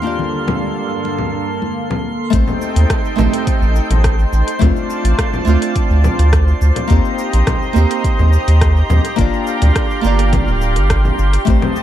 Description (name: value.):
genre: sunset chillout.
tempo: 105 BPM.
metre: 4/4.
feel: straight.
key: G minor.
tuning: A4 = 440 Hz.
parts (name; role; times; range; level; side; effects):
nylon-string guitar; accompaniment; 0.0-11.8 s; A3 to D5; -21 LUFS; moving between left 10 dB and right 9 dB; auto-pan, analog delay.
lush unison pad; sustained chords; 0.0-11.8 s; G2 to Bb5; -22 LUFS; right 1 dB; chorus.
drifting glass-harmonics texture; texture; 0.0-11.8 s; C6; -28 LUFS; right 1 dB; chorus, built-in reverb.
congas; percussion; 0.2-1.7 s; none; -28 LUFS; left 5 dB; none.
deep house drum kit; drums; 0.5-11.8 s; cabasa, congas, hi-hat, rim click; -23 LUFS; left 1 dB; overdrive, analog delay.
round analog bass; bass; 2.3-11.6 s; D1 to Eb2; -12 LUFS; equal; none.
electronic kick drum; drums; 2.3-11.6 s; none; -18 LUFS; equal; overdrive.
room: little or no reverb.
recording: echo-heavy mix.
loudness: -13 LUFS.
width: side -11 dB against mid.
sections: 0.0-2.3 A section; 2.3-11.8 B section.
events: none.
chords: 0.0 Gm7; 2.3 Am7b5; 4.6 Dm7; 6.9 Eb6; 9.2 Gm7.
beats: | 0.04 0.61 1.19 1.76 | 2.33 2.90 3.47 4.04 | 4.62 5.19 5.76 6.33 | 6.90 7.47 8.04 8.62 | 9.19 9.76 10.33 10.90 | 11.47.